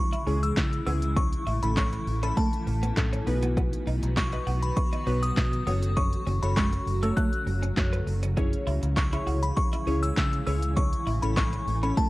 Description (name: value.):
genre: dance-pop.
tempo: 100 BPM.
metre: 4/4.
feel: straight.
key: C# minor.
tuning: A4 = 440 Hz.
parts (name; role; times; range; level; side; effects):
glassy synth bell; melody; 0.0-12.1 s; A5 to F#6; -32 LUFS; left 2 dB; chorus.
glassy digital keys; accompaniment; 0.0-12.1 s; G#3 to C#5; -34 LUFS; equal; chorus.
granular cloud pad; sustained chords; 0.1-12.1 s; C#3 to F#4; -36 LUFS; equal; built-in reverb, sidechain pumping.
impact; sound effects; 0.0-1.2 s; none; barely audible; none; none.
twelve-string electric guitar; riff; 0.1-12.1 s; G#3 to F#4; -34 LUFS; right 2 dB; wide subtle chorus.
deep house drum kit; drums; 0.1-12.1 s; handclaps, hi-hat, kick drum, shaker, snare drum; -27 LUFS; equal; none.
vintage muted fingered electric bass; bass; 0.3-11.9 s; F#1 to C#3; -28 LUFS; equal; sidechain pumping.
room: little or no reverb.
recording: worn, warbling old tape, cassette tape, warbly pitch drift.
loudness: -24 LUFS.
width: side -19 dB against mid.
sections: 0.0-12.1 A section.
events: impact 0.0-1.2.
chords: 0.0 C#m; 1.2 A; 3.3 B; 5.7 F#m; 8.4 C#m; 10.8 A.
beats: 0.57 | 1.17 1.77 2.37 2.97 | 3.57 4.17 4.77 5.37 | 5.97 6.57 7.17 7.77 | 8.37 8.97 9.57 10.17 | 10.77 11.37 11.97.